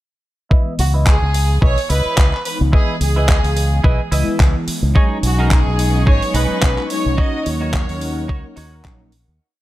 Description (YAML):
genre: nu-disco, nu disco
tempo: 108 BPM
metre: 4/4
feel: swing 56% on 16ths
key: C# dorian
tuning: A4 = 441 Hz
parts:
  - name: mellow synth brass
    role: accompaniment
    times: 0.5-9.1 s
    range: E3 to D#5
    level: -25 LUFS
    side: equal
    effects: chorus, slapback echo
  - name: clean electric guitar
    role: riff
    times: 0.5-9.0 s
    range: D#4 to D#5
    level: -26 LUFS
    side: right 2 dB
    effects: lush chorus, low-pass filter, slapback echo
  - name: electronic kick drum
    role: drums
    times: 0.5-9.0 s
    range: none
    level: -14 LUFS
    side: equal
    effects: none
  - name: clear chamber violin section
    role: melody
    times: 0.8-8.6 s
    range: F#4 to D#5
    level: -24 LUFS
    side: right 1 dB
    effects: tape echo
  - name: fingered electric bass with an envelope filter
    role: bass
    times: 0.8-9.4 s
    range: G#1 to D#2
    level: -18 LUFS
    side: equal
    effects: tube saturation
  - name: pop drum kit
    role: drums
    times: 0.8-9.2 s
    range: handclaps, hi-hat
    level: -25 LUFS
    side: right 1 dB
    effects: overdrive
  - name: muted studio string section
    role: sustained chords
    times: 5.0-9.4 s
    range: B3 to C#6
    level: -31 LUFS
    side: left 2 dB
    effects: vintage 12-bit sampler grit, sidechain pumping
room: digital ambience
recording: none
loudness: -14 LUFS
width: side -15 dB against mid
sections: 0.5-9.4 groove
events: filter sweep on clean electric guitar 0.5-9.4; fade-out 6.4-9.4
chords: 0.5 C#m9; 5.0 B69; 7.2 D#m7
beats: | 0.51 1.07 1.62 2.18 | 2.74 3.29 3.85 4.40 | 4.96 5.51 6.07 6.62 | 7.18 7.74 8.29 8.85